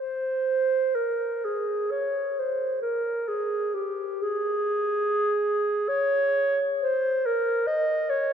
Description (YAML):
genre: classical, free, expressive piece for unaccompanied clarinet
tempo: 35-47 BPM (dotted quarters)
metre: 6/8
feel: rubato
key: Ab major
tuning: A4 = 439 Hz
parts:
  - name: mellow clarinet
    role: solo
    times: 0.0-8.3 s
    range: G4 to Eb5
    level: -23 LUFS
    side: right 1 dB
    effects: none
room: wet cathedral reverb, RT60 4.4 s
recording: dark, warm production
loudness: -23 LUFS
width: side -8 dB against mid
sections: 0.0-8.3 A section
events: none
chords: none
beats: 1.44 | 2.85 4.23 | 5.87 7.25